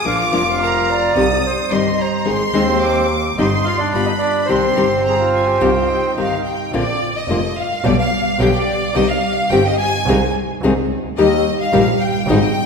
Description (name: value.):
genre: tango.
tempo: 108 BPM.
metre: 4/4.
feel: rubato.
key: C minor.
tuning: A4 = 441 Hz.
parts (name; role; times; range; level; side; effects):
bandoneon; melody; 0.0-6.1 s; C4 to F5; -18 LUFS; right 1 dB; none.
bright symphonic violin section; second line; 0.0-12.7 s; D5 to Eb6; -21 LUFS; left 1 dB; none.
nylon-string guitar; accompaniment; 0.0-12.4 s; B2 to Ab4; -18 LUFS; left 3 dB; none.
rich double bass; bass; 0.1-12.5 s; F1 to Eb2; -21 LUFS; right 2 dB; none.
silver concert flute; second line; 0.6-6.7 s; Eb4 to Eb5; -23 LUFS; right 3 dB; none.
room: wet concert hall reverb, RT60 1.9 s.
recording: recorded in a church or concert hall.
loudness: -14 LUFS.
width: side -5 dB against mid.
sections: 0.0-6.7 A section; 6.7-12.7 B section.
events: violin section solo 6.7-12.7.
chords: 0.1 Bb; 1.2 Cm; 2.3 Ab; 3.4 Cm/G; 3.9 G7; 4.5 Cm; 6.7 Bbadd9; 7.8 G/B; 9.0 Cm; 10.1 Ab/C; 11.2 Eb.